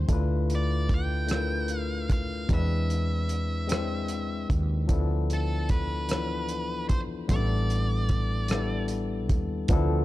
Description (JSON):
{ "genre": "slow six-eight R&B", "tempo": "50 BPM (dotted quarters)", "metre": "6/8", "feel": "straight", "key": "D dorian", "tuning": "A4 = 436 Hz", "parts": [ { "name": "barky tine electric piano", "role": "accompaniment", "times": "0.0-10.0 s", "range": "E3 to C5", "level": "-31 LUFS", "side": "left 5 dB", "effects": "none" }, { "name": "woody fretless electric bass", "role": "bass", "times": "0.0-10.0 s", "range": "A1 to E2", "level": "-28 LUFS", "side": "right 1 dB", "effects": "none" }, { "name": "cloth-damped thuddy drum kit", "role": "drums", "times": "0.1-9.9 s", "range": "hi-hat, kick drum, rim click", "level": "-27 LUFS", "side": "right 1 dB", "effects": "none" }, { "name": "octave-fuzz lead guitar", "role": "melody", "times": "0.5-8.9 s", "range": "A4 to G5", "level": "-35 LUFS", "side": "right 2 dB", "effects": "distortion, digital delay" }, { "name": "mellow horn section", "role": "stabs", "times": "9.7-10.0 s", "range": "E3 to A4", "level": "-34 LUFS", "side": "right 10 dB", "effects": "none" } ], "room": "small room ambience", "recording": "dark, warm production", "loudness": "-25 LUFS", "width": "side -16 dB against mid", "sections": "0.0-9.7 A section", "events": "none", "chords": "0.1 Dm69; 2.5 E7b13; 4.9 Dm69; 7.3 A9sus4" }